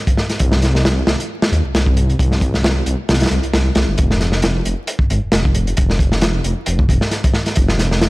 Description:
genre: breakbeat, breaks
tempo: 134 BPM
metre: 4/4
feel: swing 54% on 16ths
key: unclear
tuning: A4 = 438 Hz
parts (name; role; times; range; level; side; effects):
- crunchy breakbeat drum kit; drums; 0.1-8.1 s; hi-hat, kick drum, snare drum; -16 LUFS; equal; none
- detuned saw bass; bass; 0.4-8.1 s; F1 to Eb2; -17 LUFS; equal; none
room: light reverb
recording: dark, warm production, vinyl crackle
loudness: -14 LUFS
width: side -21 dB against mid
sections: 0.0-8.1 A section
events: none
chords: none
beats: | 0.40 0.85 1.30 1.75 | 2.19 2.64 3.09 3.54 | 3.98 4.43 4.88 5.33 | 5.78 6.22 6.67 7.12 | 7.57 8.01

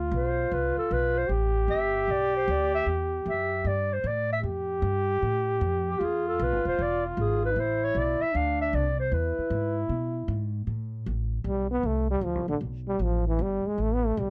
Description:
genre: jazz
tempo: 154 BPM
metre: 4/4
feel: swing 66% on 8ths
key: A minor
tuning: A4 = 440 Hz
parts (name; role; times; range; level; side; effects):
- breathy trombone; second line; 0.0-14.3 s; D3 to G4; -31 LUFS; equal; none
- upright bass; bass; 0.0-14.3 s; E1 to B2; -32 LUFS; equal; none
- breathy clarinet; melody; 0.1-9.8 s; F4 to F5; -30 LUFS; equal; none
room: light reverb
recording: dry, close 1970s-style studio recording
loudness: -27 LUFS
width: mono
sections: 0.0-10.7 A section; 10.7-14.3 B section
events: trombone solo 10.7-14.3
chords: 0.0 Dm7 (rootless); 1.3 Asus2; 4.4 F; 6.0 E; 7.6 Asus2; 8.3 Csus2; 9.1 E; 10.7 Amadd9; 12.2 N.C.; 13.8 Asus2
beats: 0.12 0.51 0.90 | 1.29 1.69 2.08 2.47 | 2.87 3.26 3.65 4.04 | 4.43 4.83 5.22 5.61 | 6.00 6.39 6.78 7.17 | 7.56 7.95 8.34 8.73 | 9.12 9.51 9.89 10.28 | 10.67 11.06 11.45 11.84 | 12.23 12.62 13.01 13.39 | 13.79 14.17

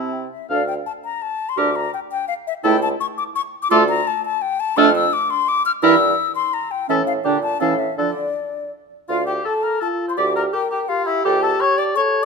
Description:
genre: quick classical-period movement for wind quintet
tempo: 168 BPM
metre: 3/4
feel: straight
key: D minor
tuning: A4 = 438 Hz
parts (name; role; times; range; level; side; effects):
- mellow hollow silver concert flute; melody; 0.0-12.2 s; D5 to F6; -22 LUFS; left 7 dB; none
- warm oboe; second line; 0.0-12.2 s; E4 to F5; -23 LUFS; left 4 dB; none
- mellow clarinet; accompaniment; 0.0-11.4 s; C4 to A4; -22 LUFS; right 9 dB; none
- warm French horn; accompaniment; 0.0-12.2 s; D3 to Bb4; -25 LUFS; right 2 dB; none
- mellow bassoon; bass; 0.0-11.5 s; C#2 to D3; -25 LUFS; right 4 dB; none
room: moderate recital hall reverb, RT60 1.7 s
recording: none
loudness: -17 LUFS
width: side -4 dB against mid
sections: 0.5-9.1 A section; 9.1-12.2 A section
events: none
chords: 0.5 Dm; 1.6 Gm/D; 2.6 A/C#; 3.7 Dm; 4.8 Dm/F; 5.8 Edim/G; 6.9 A; 7.3 Gm/Bb; 7.6 A; 8.0 N.C.; 9.1 Dm; 10.2 Gm/D; 11.2 A7/C#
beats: 0.12 | 0.49 0.86 1.22 | 1.58 1.93 2.29 | 2.64 3.00 3.35 | 3.71 4.07 4.42 | 4.77 5.13 5.48 | 5.83 6.19 6.54 | 6.90 7.25 7.61 | 7.98 8.36 8.72 | 9.09 9.45 9.81 | 10.17 10.53 10.89 | 11.24 11.60 11.95

